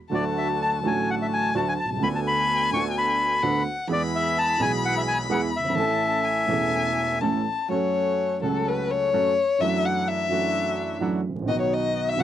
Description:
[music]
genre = tango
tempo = 127 BPM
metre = 4/4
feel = rubato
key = A major, F# minor from 7.7 s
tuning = A4 = 441 Hz
[part]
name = bandoneon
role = melody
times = 0.1-7.2 s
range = D5 to C#6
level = -24 LUFS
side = left 2 dB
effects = none
[part]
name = dark violin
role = second line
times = 0.1-12.2 s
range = A4 to B5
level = -26 LUFS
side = left 6 dB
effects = none
[part]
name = dark grand piano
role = accompaniment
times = 0.1-12.2 s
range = E1 to A4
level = -26 LUFS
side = right 4 dB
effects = none
[part]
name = bandoneon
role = stabs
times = 0.1-12.2 s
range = D3 to A4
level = -34 LUFS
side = right 3 dB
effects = none
[sound]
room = light reverb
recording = dry, close 1970s-style studio recording, vinyl crackle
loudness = -21 LUFS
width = side -11 dB against mid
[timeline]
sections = 0.0-7.7 A section; 7.7-12.2 B section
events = violin solo 7.7-12.2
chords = 0.1 D; 2.0 Bm7/D; 3.9 E; 5.8 A; 7.7 F#m; 9.6 Dadd9/F#; 11.5 B

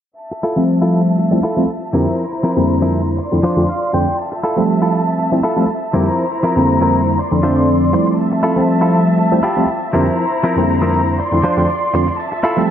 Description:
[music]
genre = filtered disco house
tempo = 120 BPM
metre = 4/4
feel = straight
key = F major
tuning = A4 = 440 Hz
[part]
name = clear studio violin section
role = sustained chords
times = 0.2-12.7 s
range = E4 to C6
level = -21 LUFS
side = equal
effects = low-pass filter
[part]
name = maracas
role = percussion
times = 0.2-12.7 s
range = none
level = -52 LUFS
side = right 1 dB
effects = none
[part]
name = direct-recorded clean electric guitar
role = riff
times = 0.3-12.6 s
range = F3 to G5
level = -19 LUFS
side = equal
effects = vintage 12-bit sampler grit, low-pass filter
[part]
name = tine electric piano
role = accompaniment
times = 0.6-12.7 s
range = F2 to E5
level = -15 LUFS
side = equal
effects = overdrive, phaser, low-pass filter
[sound]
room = moderate plate reverb, RT60 2.8 s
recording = dreamy mix soaked in reverb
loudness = -13 LUFS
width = side -9 dB against mid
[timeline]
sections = 0.2-12.7 A section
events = filter sweep 0.2-12.7; clean electric guitar fill 3.2-4.2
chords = 0.2 Fmaj7; 1.9 C7/F; 3.2 Dm7/F; 4.2 Fmaj7; 5.9 C7/F; 7.2 Dm7/F; 8.2 Fmaj7; 9.9 C7/F; 11.2 Dm7/F; 12.2 Fmaj7

